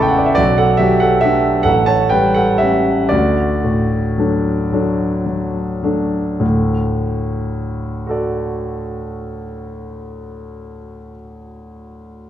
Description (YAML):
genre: classical, romantic nocturne for solo piano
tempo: 34-50 BPM (dotted quarters)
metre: 12/8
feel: rubato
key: D major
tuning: A4 = 441 Hz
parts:
  - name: warm concert grand piano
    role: solo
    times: 0.0-12.3 s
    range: A1 to E6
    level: -15 LUFS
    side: equal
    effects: none
room: wet recital hall reverb, RT60 1.6 s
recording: dark, warm production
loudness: -14 LUFS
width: side -11 dB against mid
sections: 0.0-6.4 A section; 6.4-12.3 B section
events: slowing down 0.0-6.4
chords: 0.4 Bm7; 1.7 A7; 3.1 D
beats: | 0.38 1.66 3.11 4.73 | 6.42 8.08 9.73 11.41